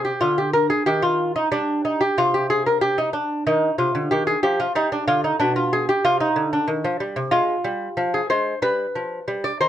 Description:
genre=classical, baroque-style dance for lute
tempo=93 BPM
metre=4/4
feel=rubato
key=unclear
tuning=A4 = 444 Hz
part: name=lute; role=solo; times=0.0-9.7 s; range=B2 to D5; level=-19 LUFS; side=equal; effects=none
room=light reverb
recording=dark, warm production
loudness=-19 LUFS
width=side -11 dB against mid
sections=0.0-9.7 A section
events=none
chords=0.0 Bb13/C; 0.9 Eb; 2.2 Cm; 4.7 G; 6.0 Cm; 7.3 Fm; 8.6 G

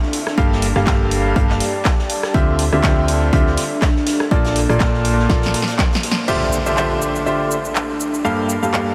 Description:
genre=piano house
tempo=122 BPM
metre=4/4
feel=swing 55% on 16ths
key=D minor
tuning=A4 = 440 Hz
part: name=loose indie drum kit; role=drums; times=0.0-6.3 s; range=hi-hat, snare drum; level=-35 LUFS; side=equal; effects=sidechain pumping on hats, high-pass filter on hats, high-pass filter on snare, high-pass filter on room
part: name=deep dark ambient pad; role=texture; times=0.0-8.9 s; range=Bb3 to C6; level=-28 LUFS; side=equal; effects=chorus, built-in reverb, sidechain pumping
part: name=punchy analog drum machine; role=drums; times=0.1-8.8 s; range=crash cymbal, handclaps, hi-hat, rim click, shaker, snare drum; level=-26 LUFS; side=equal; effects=none
part: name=bright baby grand piano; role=riff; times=0.4-8.9 s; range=G2 to F5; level=-22 LUFS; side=equal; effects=vintage 12-bit sampler grit, sidechain pumping, diffuse ambient delay
part: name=solid FM bass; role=bass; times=0.4-5.5 s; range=G1 to D2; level=-22 LUFS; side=equal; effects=sidechain pumping
part: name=electronic kick drum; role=drums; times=0.4-5.9 s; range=none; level=-20 LUFS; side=equal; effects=none
part: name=impact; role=sound effects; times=6.3-8.2 s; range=none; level=-30 LUFS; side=equal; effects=none
room=moderate huge ambient reverb, RT60 6.9 s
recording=dreamy mix soaked in reverb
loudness=-17 LUFS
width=mono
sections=0.0-6.3 A section; 6.3-8.9 B section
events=drum fill 5.3-6.3; band accent 6.1; impact 6.3-8.2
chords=0.1 Gm9; 2.1 Dm11; 4.1 Bbmaj7; 6.3 Dm11; 8.0 Gm9

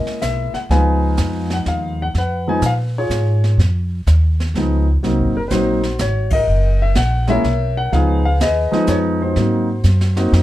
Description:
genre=jazz piano trio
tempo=125 BPM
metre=3/4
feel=swing 67% on 8ths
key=Db mixolydian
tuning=A4 = 445 Hz
part: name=warm concert grand piano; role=melody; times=0.0-10.4 s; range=F3 to Ab5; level=-18 LUFS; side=left 1 dB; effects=none
part: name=upright bass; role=bass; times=0.0-10.4 s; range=Gb1 to Bb2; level=-17 LUFS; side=equal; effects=none
part: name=jazz brush drum kit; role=drums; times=0.1-10.4 s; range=brushed snare drum, hi-hat, kick drum, ride cymbal, snare drum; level=-26 LUFS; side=right 2 dB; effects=none
room=light reverb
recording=dark, warm production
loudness=-15 LUFS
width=side -14 dB against mid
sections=0.0-10.4 A section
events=band accent 6.2; drum fill 9.8-10.4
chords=0.0 Gb7 (rootless); 0.7 Db7; 5.0 Ab7; 6.5 Gb7; 7.9 Db7; 9.4 Ab7

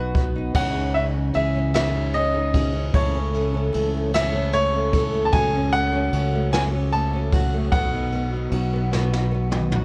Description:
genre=six-eight pop ballad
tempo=50 BPM (dotted quarters)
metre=6/8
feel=straight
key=C# minor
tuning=A4 = 440 Hz
part: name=clear baby grand piano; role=melody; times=0.0-9.7 s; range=B4 to A5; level=-27 LUFS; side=equal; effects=none
part: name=flamenco guitar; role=accompaniment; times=0.0-9.8 s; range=B2 to A4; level=-29 LUFS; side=equal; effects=double-tracked
part: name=fingerpicked plugged-in steel-string acoustic guitar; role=arpeggios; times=0.0-9.8 s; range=B2 to A4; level=-33 LUFS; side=equal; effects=digital delay
part: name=fingered electric bass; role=bass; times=0.0-9.8 s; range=B1 to C#2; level=-27 LUFS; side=equal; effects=none
part: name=jazz brush drum kit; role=drums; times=0.1-9.8 s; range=crash cymbal, hi-hat, kick drum, ride cymbal, snare drum, toms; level=-29 LUFS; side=equal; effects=none
room=small room ambience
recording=worn, warbling old tape, cassette tape, warbly pitch drift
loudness=-22 LUFS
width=mono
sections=0.6-9.8 A section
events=drum fill 8.9-9.8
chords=0.0 B; 0.6 C#madd9; 2.9 A/C#; 5.3 F#m/C#; 7.7 B

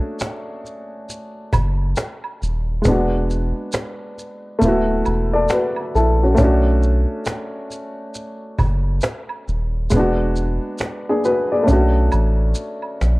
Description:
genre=lo-fi hip hop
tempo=68 BPM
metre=4/4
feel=swing 62% on 16ths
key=B dorian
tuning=A4 = 442 Hz
part: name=dark upright piano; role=accompaniment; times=0.0-13.2 s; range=G#3 to D5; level=-20 LUFS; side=equal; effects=cassette tape, low-pass filter
part: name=cajon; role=drums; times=0.2-13.2 s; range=none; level=-24 LUFS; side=equal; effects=none
part: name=maracas and woodblock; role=percussion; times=0.2-13.2 s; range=none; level=-30 LUFS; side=right 3 dB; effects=none
part: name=soft dub sub bass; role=bass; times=1.5-13.2 s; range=D1 to B1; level=-18 LUFS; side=equal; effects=none
room=light reverb, small room ambience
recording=worn, warbling old tape, cassette tape, warbly pitch drift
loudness=-16 LUFS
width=side -22 dB against mid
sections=0.0-13.2 A section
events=drum fill 12.6-13.2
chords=0.0 Bm9 (rootless); 2.9 E9; 4.6 D69; 6.4 Bm9; 9.9 E9; 11.7 Bm9

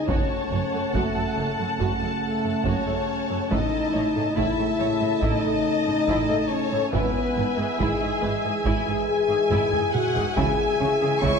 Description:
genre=cinematic, epic orchestral film score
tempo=70 BPM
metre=4/4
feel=straight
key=unclear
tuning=A4 = 439 Hz
part: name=rich symphonic violin section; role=melody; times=0.0-11.4 s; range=G#5 to A5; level=-31 LUFS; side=left 4 dB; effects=none
part: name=warm symphonic violin section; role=second line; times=0.0-11.4 s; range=G#4 to C#6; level=-29 LUFS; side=left 4 dB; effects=none
part: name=dark trombone section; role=sustained chords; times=0.0-11.4 s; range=C#3 to A3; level=-32 LUFS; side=right 4 dB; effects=none
part: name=warm French horn section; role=sustained chords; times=0.0-11.4 s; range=G#3 to C#5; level=-26 LUFS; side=left 4 dB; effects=none
part: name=rich symphonic viola section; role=accompaniment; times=0.1-11.4 s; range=E4 to F#5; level=-32 LUFS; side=right 2 dB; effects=none
part: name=rich symphonic cello section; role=bass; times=0.1-11.3 s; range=F#2 to C#3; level=-31 LUFS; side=right 4 dB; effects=none
part: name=rich symphonic double bass section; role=bass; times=0.1-11.3 s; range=F#1 to C#2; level=-32 LUFS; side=right 4 dB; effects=none
part: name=taiko ensemble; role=drums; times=0.1-11.4 s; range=none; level=-30 LUFS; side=right 1 dB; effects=none
part: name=timpani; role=percussion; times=10.4-11.4 s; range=C#3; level=-34 LUFS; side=right 1 dB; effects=none
room=wet scoring stage reverb, RT60 1.7 s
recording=none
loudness=-21 LUFS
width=side -6 dB against mid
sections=0.0-11.4 A section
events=drum fill 9.5-10.4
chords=0.1 F#m; 3.5 A; 6.9 E/G#; 10.4 C#m

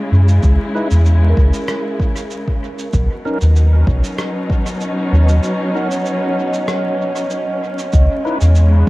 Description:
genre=ambient dub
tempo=96 BPM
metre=4/4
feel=swing 54% on 16ths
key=C# dorian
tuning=A4 = 440 Hz
part: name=dark studio string section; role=sustained chords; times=0.0-8.9 s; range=B2 to E4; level=-21 LUFS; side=left 1 dB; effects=none
part: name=vibraphone with soft mallets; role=arpeggios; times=0.0-8.4 s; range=C#4 to F#5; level=-24 LUFS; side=right 2 dB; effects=tape echo
part: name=soft dub sub bass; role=bass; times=0.1-8.9 s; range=B1 to F#2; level=-10 LUFS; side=equal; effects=none
part: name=electronic shaker and rim click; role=drums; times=0.3-8.7 s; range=none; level=-30 LUFS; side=right 1 dB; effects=dub echo
part: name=electronic kick drum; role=drums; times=0.4-8.9 s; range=none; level=-17 LUFS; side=equal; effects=overdrive
part: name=tonewheel organ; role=stabs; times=0.7-8.4 s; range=C#4 to B4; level=-26 LUFS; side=left 1 dB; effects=overdrive, chorus vibrato, slow rotary speaker, vintage 12-bit sampler grit, low-pass filter, dub echo
room=digital ambience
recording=dark, warm production, vinyl crackle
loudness=-13 LUFS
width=side -20 dB against mid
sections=0.0-7.9 A section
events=break 5.4-7.9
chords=0.0 C#m; 2.9 Bmaj7; 7.9 C#m7

